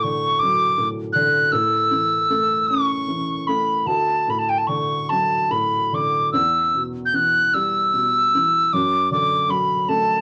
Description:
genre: celtic folk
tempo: 50 BPM (dotted quarters)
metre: 6/8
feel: uneven beats, rubato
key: unclear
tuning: A4 = 440 Hz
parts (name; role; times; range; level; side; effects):
- tin whistle; melody; 0.0-10.2 s; G5 to G6; -20 LUFS; equal; none
- dark upright piano; accompaniment; 0.0-10.2 s; D2 to C#4; -28 LUFS; equal; none
room: moderate studio reverb, RT60 0.5 s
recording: none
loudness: -20 LUFS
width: mono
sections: 0.0-10.2 A section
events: none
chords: 0.0 D; 1.5 A; 3.9 D; 6.3 Em; 8.7 D/F#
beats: 0.40 | 1.51 2.68 | 3.87 5.10 | 6.34 7.55 | 8.73 9.89

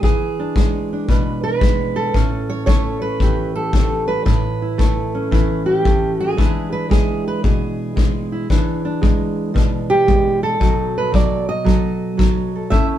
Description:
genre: acoustic country blues, solo or duo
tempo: 114 BPM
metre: 4/4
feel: swing 67% on 8ths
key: E mixolydian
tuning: A4 = 439 Hz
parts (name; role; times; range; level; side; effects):
- fingerpicked steel-string acoustic guitar; melody; 0.0-13.0 s; A2 to E5; -18 LUFS; right 2 dB; none
- kick drum; drums; 0.0-12.9 s; none; -17 LUFS; left 1 dB; none
room: light reverb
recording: band playing live in one room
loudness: -16 LUFS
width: side -11 dB against mid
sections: 0.0-13.0 A section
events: none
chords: 0.0 E7; 2.1 A7; 6.4 E7; 10.6 B7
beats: | 0.03 0.56 1.09 1.62 | 2.15 2.67 3.20 3.73 | 4.26 4.79 5.32 5.85 | 6.38 6.91 7.43 7.96 | 8.49 9.02 9.55 10.08 | 10.61 11.13 11.66 12.19 | 12.72

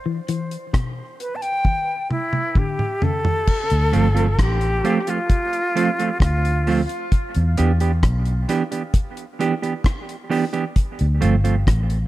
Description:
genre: dub reggae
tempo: 66 BPM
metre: 4/4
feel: straight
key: D dorian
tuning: A4 = 441 Hz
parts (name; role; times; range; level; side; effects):
- semi-hollow electric guitar; riff; 0.1-3.3 s; B2 to E3; -27 LUFS; left 5 dB; spring reverb, dub echo
- deep reggae drum kit; drums; 0.3-12.1 s; crash cymbal, hi-hat, kick drum, rim click, toms; -21 LUFS; equal; none
- bright concert flute; melody; 1.2-6.8 s; E4 to A5; -24 LUFS; left 1 dB; dub echo
- vintage muted fingered electric bass; bass; 3.7-12.1 s; G1 to E2; -18 LUFS; equal; none
- mellow electric guitar; accompaniment; 3.9-11.6 s; E3 to G4; -23 LUFS; right 5 dB; harmonic tremolo, dub echo
room: light reverb, small room reverb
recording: dark, warm production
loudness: -18 LUFS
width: side -16 dB against mid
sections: 0.0-3.5 A section; 3.5-12.1 B section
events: break 0.0-3.5; drum fill 1.7-3.5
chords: 0.0 N.C.; 3.5 Dm7; 7.1 Em7; 10.8 Dm7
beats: 0.74 1.65 2.56 | 3.47 4.38 5.29 6.21 | 7.12 8.03 8.94 9.85 | 10.76 11.67

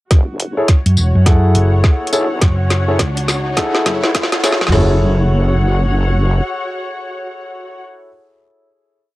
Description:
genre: glitch hop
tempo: 104 BPM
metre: 4/4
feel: swing 61% on 16ths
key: F# minor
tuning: A4 = 440 Hz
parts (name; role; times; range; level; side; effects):
- wobble bass; bass; 0.1-6.4 s; F#1 to B1; -15 LUFS; equal; chorus, tube saturation, high-pass filter
- drum and bass drum kit; drums; 0.1-4.9 s; crash cymbal, kick drum, snare drum, toms; -13 LUFS; equal; none
- drum and bass drum kit; drums; 0.1-4.8 s; hi-hat, snare drum, tambourine; -18 LUFS; equal; none
- riser; sound effects; 1.8-4.7 s; none; -27 LUFS; equal; none
- muted studio string section; texture; 0.1-7.8 s; F#4 to F#5; -25 LUFS; left 1 dB; sidechain pumping
- dark concert grand piano; stabs; 0.6-8.1 s; E4 to F#5; -20 LUFS; left 1 dB; sidechain pumping, analog delay
- hollow-body short-scale fingered electric bass; bass; 0.9-4.7 s; E1 to F#2; -14 LUFS; equal; none
room: little or no reverb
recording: dry, gritty hardware recording, cassette tape, high-pass filter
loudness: -12 LUFS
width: side -18 dB against mid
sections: 0.1-4.7 build; 4.7-7.0 final chord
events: build-up 0.1-4.7; drum fill 0.1-4.7; filter sweep 0.1-4.7; riser 1.8-4.7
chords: 0.1 F#m9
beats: | 0.11 0.69 1.26 1.84 | 2.42 2.99 3.57 4.15 | 4.72 5.30 5.88 6.46

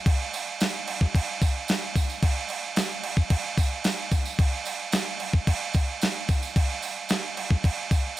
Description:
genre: rock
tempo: 111 BPM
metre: 4/4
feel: straight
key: none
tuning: none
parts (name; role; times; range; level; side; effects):
- crisp 8-bit digital drum machine; drums; 0.1-8.0 s; crash cymbal, kick drum, snare drum; -23 LUFS; equal; overdrive
- tambourine; percussion; 0.1-8.2 s; none; -39 LUFS; right 6 dB; none
room: digital ambience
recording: none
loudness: -24 LUFS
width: side -16 dB against mid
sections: 0.0-8.2 A section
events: none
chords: none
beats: | 0.06 0.60 1.14 1.68 | 2.22 2.76 3.30 3.85 | 4.39 4.93 5.47 6.01 | 6.55 7.09 7.63 8.17

